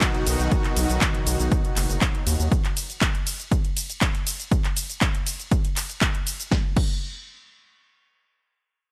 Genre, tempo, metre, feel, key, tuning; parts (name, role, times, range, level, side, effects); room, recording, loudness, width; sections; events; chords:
progressive house; 120 BPM; 4/4; straight; A4 = 440 Hz
supersaw pad; sustained chords; 0.0-2.5 s; B2 to F#4; -30 LUFS; equal; sidechain pumping
big-room dance drum kit; drums; 0.0-6.9 s; crash cymbal, handclaps, hi-hat, ride cymbal, shaker, snare drum; -30 LUFS; equal; sidechain pumping on hats, sidechain pumping on perc, sidechain pumping on cymbals
electronic kick drum; drums; 0.0-6.9 s; -26 LUFS; equal; overdrive
round analog bass; bass; 0.3-2.5 s; F#1 to D#2; -26 LUFS; equal; sidechain pumping
digital ambience; -24 LUFS; mono
0.0-6.5 A section; 6.5-8.9 B section
drop 0.0-6.5
0.0 B; 6.5 N.C.